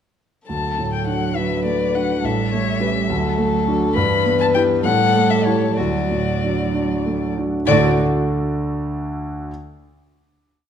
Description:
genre	quick classical-period movement for piano quartet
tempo	62-70 BPM (dotted quarters)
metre	6/8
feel	rubato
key	D major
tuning	A4 = 441 Hz
part	dark violin	melody	0.5-8.0 s	C#5 to B5	-23 LUFS	left 7 dB	none
part	dark cello	second line	0.5-8.0 s	A2 to G3	-25 LUFS	right 8 dB	none
part	dark violin	second line	0.5-8.0 s	F#4 to C#5	-23 LUFS	left 4 dB	none
part	warm grand piano	accompaniment	0.5-9.5 s	A1 to D5	-20 LUFS	right 1 dB	none
room	wet recital hall reverb, RT60 1.4 s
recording	dark, warm production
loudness	-17 LUFS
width	side -8 dB against mid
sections	0.5-7.7 A section; 7.7-9.5 final chord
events	none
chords	0.5 D; 2.2 A7; 3.1 D; 4.0 Em/G; 4.8 A5; 5.8 D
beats	| 0.48 1.36 | 2.24 3.10 | 3.96 4.84 | 5.77 6.73 | 7.67 8.57

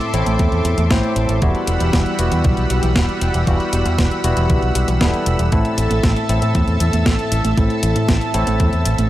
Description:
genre	italo disco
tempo	117 BPM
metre	4/4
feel	straight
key	unclear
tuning	A4 = 439 Hz
part	lush unison pad	sustained chords	0.0-9.1 s	G3 to E6	-24 LUFS	equal	chorus
part	barky tine electric piano	stabs	0.0-9.1 s	A2 to C5	-22 LUFS	left 1 dB	overdrive, tape echo
part	clean 12-bit digital drum machine	drums	0.0-9.1 s	hi-hat, snare drum	-24 LUFS	equal	overdrive, small room ambience
part	warbly dusty pluck	arpeggios	0.1-9.1 s	B2 to A3	-25 LUFS	right 3 dB	chorus, tape echo
part	fingered electric bass with an envelope filter	bass	0.1-9.1 s	E1 to A2	-19 LUFS	equal	none
part	electronic kick drum	drums	0.4-8.7 s	none	-18 LUFS	equal	overdrive, small room ambience
room	little or no reverb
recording	dry, gritty hardware recording, transformer saturation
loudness	-15 LUFS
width	side -14 dB against mid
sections	0.0-9.1 A section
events	none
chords	0.0 Am; 1.4 Emadd9; 5.5 Am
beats	0.40 0.91 | 1.42 1.93 2.45 2.96 | 3.47 3.98 4.50 5.01 | 5.52 6.04 6.55 7.06 | 7.58 8.09 8.60

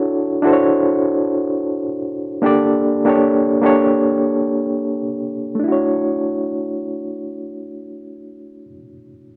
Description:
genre	R&B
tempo	75 BPM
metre	4/4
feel	swing 57% on 16ths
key	D major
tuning	A4 = 439 Hz
part	overdriven reed electric piano	accompaniment	0.0-9.4 s	A3 to D5	-19 LUFS	equal	fast tremolo
room	light reverb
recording	dry, close 1970s-style studio recording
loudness	-18 LUFS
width	mono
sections	0.0-5.6 A section; 5.6-8.8 B section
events	none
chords	0.0 Dmaj9; 2.4 Gmadd9; 5.6 Dmaj9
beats	0.03 0.83 1.63 | 2.43 3.23 4.03 4.83 | 5.63 6.43 7.23 8.03

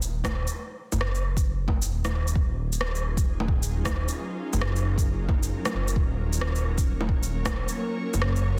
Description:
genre	future garage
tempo	133 BPM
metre	4/4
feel	swing 63% on 16ths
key	Eb minor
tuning	A4 = 435 Hz
part	dark detuned saw bass	bass	0.0-8.6 s	Eb1 to Gb1	-29 LUFS	equal	sidechain pumping
part	electronic shaker, rim click and bongos	drums	0.0-8.4 s	none	-34 LUFS	equal	soft clipping on snare
part	electronic kick drum	drums	0.2-7.5 s	none	-28 LUFS	equal	none
part	ethereal airy pad	sustained chords	3.0-8.6 s	Gb3 to Db5	-36 LUFS	equal	ensemble chorus, built-in reverb, sidechain pumping
room	light reverb, digital ambience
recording	dense, heavily limited modern master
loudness	-27 LUFS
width	mono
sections	0.0-8.6 A section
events	none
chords	0.0 Ebm11; 6.0 Gb/Eb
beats	0.11 | 0.56 1.01 1.46 1.91 | 2.36 2.81 3.26 3.71 | 4.17 4.62 5.07 5.52 | 5.97 6.42 6.87 7.32 | 7.78 8.23

